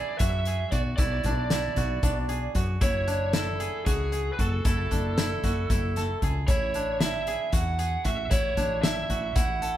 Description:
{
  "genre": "progressive instrumental, band music in an uneven meter",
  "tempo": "229 BPM (eighths)",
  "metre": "7/8",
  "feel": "straight",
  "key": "unclear",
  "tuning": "A4 = 441 Hz",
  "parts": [
    { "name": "lead guitar through a small cranked amp", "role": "melody", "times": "0.0-9.8 s", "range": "G#4 to F#5", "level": "-30 LUFS", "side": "right 2 dB", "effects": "overdrive" },
    { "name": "koto", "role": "arpeggios", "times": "0.0-9.8 s", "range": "D4 to A4", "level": "-32 LUFS", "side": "equal", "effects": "none" },
    { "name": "woody fretless electric bass", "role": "bass", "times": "0.2-9.8 s", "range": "F#1 to F#2", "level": "-30 LUFS", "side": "equal", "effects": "none" },
    { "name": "loose indie drum kit", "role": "drums", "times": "0.2-9.7 s", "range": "hi-hat, kick drum, snare drum", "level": "-28 LUFS", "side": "equal", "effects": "none" },
    { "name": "tube shaker", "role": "percussion", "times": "0.2-9.6 s", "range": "none", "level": "-44 LUFS", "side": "left 6 dB", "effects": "none" }
  ],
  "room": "moderate large studio reverb, RT60 1.4 s",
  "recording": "band playing live in one room",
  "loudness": "-24 LUFS",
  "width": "side -12 dB against mid",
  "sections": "0.0-9.8 A section",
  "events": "none",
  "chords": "0.0 Bm; 2.8 F#m7; 6.5 A"
}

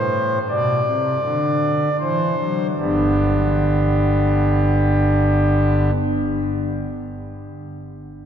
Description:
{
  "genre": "classical, chorale-style piece for pipe organ",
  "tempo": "38 BPM",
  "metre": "4/4",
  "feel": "straight",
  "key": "G major",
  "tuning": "A4 = 445 Hz",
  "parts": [
    { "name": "pipe organ, foundations", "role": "solo", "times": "0.0-5.9 s", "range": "G1 to D5", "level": "-17 LUFS", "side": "equal", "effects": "none" }
  ],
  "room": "wet cathedral reverb, RT60 5.8 s",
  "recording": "recorded in a church or concert hall",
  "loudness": "-16 LUFS",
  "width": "side -8 dB against mid",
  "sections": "0.0-2.8 A section; 2.8-8.3 B section",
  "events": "slowing down 0.0-2.8",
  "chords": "0.0 D7/A; 2.8 G"
}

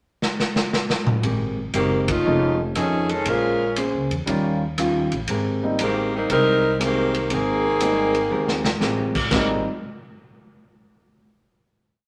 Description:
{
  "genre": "jazz, big band swing",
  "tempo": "119 BPM",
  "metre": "4/4",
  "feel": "swing 67% on 8ths",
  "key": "Ab major",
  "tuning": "A4 = 440 Hz",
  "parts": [
    { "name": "swinging big-band drum kit", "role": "drums", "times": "0.2-9.5 s", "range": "crash cymbal, hi-hat, kick drum, ride cymbal, rim click, snare drum, toms", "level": "-28 LUFS", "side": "equal", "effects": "none" },
    { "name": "vintage hollow-body jazz guitar", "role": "accompaniment", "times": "1.2-9.6 s", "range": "Eb3 to C5", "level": "-28 LUFS", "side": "equal", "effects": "none" },
    { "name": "upright bass", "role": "bass", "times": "1.2-9.6 s", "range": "F1 to F2", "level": "-31 LUFS", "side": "equal", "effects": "none" },
    { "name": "bright saxophone section", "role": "melody", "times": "1.8-8.8 s", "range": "Eb3 to Bb4", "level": "-23 LUFS", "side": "equal", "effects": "none" },
    { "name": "warm concert grand piano", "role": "accompaniment", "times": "2.2-9.6 s", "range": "G3 to F4", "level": "-28 LUFS", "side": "equal", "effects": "none" }
  ],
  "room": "wet studio reverb, RT60 0.8 s",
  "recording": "none",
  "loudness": "-22 LUFS",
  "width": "mono",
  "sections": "0.0-1.2 pickup bar; 1.2-9.3 A section; 9.3-11.3 final chord",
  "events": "drum fill 0.2-1.2, 8.3-8.8; band accent 2.0",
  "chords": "0.0 N.C.; 1.2 Abmaj9; 2.3 F7alt; 3.3 Bbm9; 4.3 Eb9; 5.3 Abmaj9"
}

